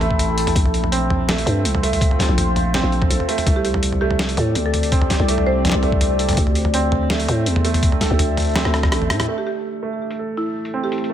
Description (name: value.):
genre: half-time drum and bass.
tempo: 165 BPM.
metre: 4/4.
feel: half-time.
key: A phrygian.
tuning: A4 = 440 Hz.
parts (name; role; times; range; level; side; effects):
deep dark ambient pad; sustained chords; 0.0-11.1 s; A3 to E5; -26 LUFS; left 2 dB; chorus, built-in reverb, sidechain pumping.
felt-muted upright piano; arpeggios; 0.0-11.1 s; A3 to A4; -24 LUFS; right 5 dB; low-pass filter, digital delay.
growling 808-style bass; bass; 0.0-9.3 s; A1 to A2; -20 LUFS; equal; none.
boom bap sampler-style drum kit; drums; 0.0-11.1 s; hi-hat, rim click, snare drum, toms; -22 LUFS; equal; low-pass filter on hats, small room reverb, low-pass filter on toms, low-pass filter on snare.
electronic kick drum; drums; 0.1-8.9 s; none; -19 LUFS; left 1 dB; small room reverb.
buzzing marimba with medium mallets; melody; 3.6-6.0, 9.4-11.1 s; E4 to C5; -28 LUFS; right 2 dB; vintage 12-bit sampler grit, dub echo.
room: light reverb.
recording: none.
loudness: -16 LUFS.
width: side -10 dB against mid.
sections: 0.0-9.3 A section; 9.3-11.1 B section.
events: drop 0.0-9.3; drum fill 8.6-9.3; filter sweep on drum 9.3-11.1.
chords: 0.0 Am; 0.6 Bb5; 3.5 C5; 6.4 Dsus2; 9.3 Am.